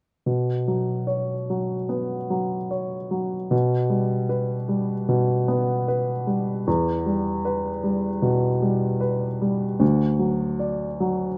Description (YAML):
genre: neoclassical minimalist piano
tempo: 76 BPM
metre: 4/4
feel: rubato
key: B minor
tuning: A4 = 442 Hz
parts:
  - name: warm upright piano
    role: solo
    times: 0.3-11.4 s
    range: D2 to D5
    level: -24 LUFS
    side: equal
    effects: none
room: light reverb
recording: none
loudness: -24 LUFS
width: mono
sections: 0.3-11.4 A section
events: none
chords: 0.3 Bsus2; 3.5 G/B; 6.7 Em; 9.8 D